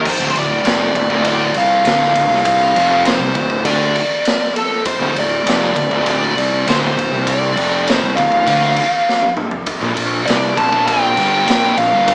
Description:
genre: stoner and doom metal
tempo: 100 BPM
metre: 4/4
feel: straight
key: D minor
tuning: A4 = 440 Hz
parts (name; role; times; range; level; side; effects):
- fuzz lead guitar; melody; 0.0-12.1 s; A4 to A5; -19 LUFS; equal; wah, distortion
- thick fuzz guitar; riff; 0.0-12.1 s; D2 to D3; -27 LUFS; equal; none
- thick fuzz guitar; riff; 0.0-12.1 s; D2 to D3; -26 LUFS; equal; distortion
- fuzz fingered electric bass; bass; 0.0-12.1 s; D1 to D2; -23 LUFS; equal; overdrive
- raw garage drum kit; drums; 0.1-12.1 s; crash cymbal, kick drum, ride cymbal, snare drum, toms; -21 LUFS; equal; none
room: light reverb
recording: band playing live in one room, small speaker sound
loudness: -15 LUFS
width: mono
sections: 0.0-12.1 A section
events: drum fill 9.1-9.7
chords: 0.0 Dm; 9.7 Bb5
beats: | 0.05 0.65 1.25 1.85 | 2.45 3.05 3.65 4.25 | 4.86 5.46 6.06 6.66 | 7.26 7.86 8.46 9.07 | 9.67 10.27 10.87 11.47 | 12.08

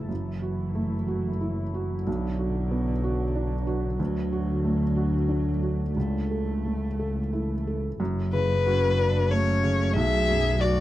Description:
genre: neoclassical piano and strings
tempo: 92 BPM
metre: 3/4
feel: rubato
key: F# minor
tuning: A4 = 440 Hz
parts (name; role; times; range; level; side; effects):
- warm cello; second line; 0.0-10.8 s; D3 to G#4; -34 LUFS; right 5 dB; none
- felt-muted upright piano; accompaniment; 0.0-10.8 s; B1 to B4; -29 LUFS; right 2 dB; none
- deep dark ambient pad; sustained chords; 0.0-10.8 s; E3 to B4; -37 LUFS; left 1 dB; chorus, built-in reverb
- warm double bass; bass; 0.0-10.8 s; F#1 to D2; -27 LUFS; equal; none
- rich violin; melody; 8.3-10.8 s; B4 to E5; -25 LUFS; left 4 dB; none
room: little or no reverb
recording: dry, close 1970s-style studio recording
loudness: -24 LUFS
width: side -14 dB against mid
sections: 0.1-8.0 A section; 8.0-10.8 B section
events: none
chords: 0.1 F#m7; 2.1 Bm; 4.0 D; 6.0 A/C#; 8.0 F#madd9; 10.0 Bm7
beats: | 0.10 0.76 1.42 | 2.07 2.71 3.35 | 4.00 4.63 5.28 | 5.95 6.64 7.32 | 8.00 8.65 9.30 | 9.95 10.60

